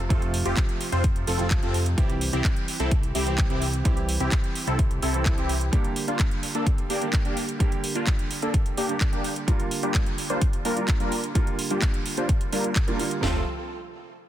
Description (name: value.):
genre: EDM, festival progressive house.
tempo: 128 BPM.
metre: 4/4.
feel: straight.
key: F major.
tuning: A4 = 440 Hz.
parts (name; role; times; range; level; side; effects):
warm grand piano; accompaniment; 0.0-13.4 s; C3 to G4; -33 LUFS; right 4 dB; sidechain pumping, digital delay.
fat analog bass; bass; 0.0-5.7, 13.2-13.4 s; F1 to F2; -27 LUFS; equal; sidechain pumping.
supersaw chords; riff; 0.1-13.4 s; G3 to C5; -29 LUFS; equal; sidechain pumping, low-pass filter, digital delay.
house drum kit; drums; 0.1-13.3 s; kick drum, snare drum, toms; -24 LUFS; equal; none.
house drum kit; drums; 0.1-13.2 s; handclaps, hi-hat; -31 LUFS; right 1 dB; soft clipping on snare.
room: digital ambience.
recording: dense, heavily limited modern master.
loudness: -22 LUFS.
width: side -12 dB against mid.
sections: 0.0-13.2 A section; 13.2-14.3 B section.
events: filter sweep on supersaw synth 0.0-13.2.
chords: 0.0 F; 2.0 C; 5.7 Gm; 9.5 Bb6; 13.2 F.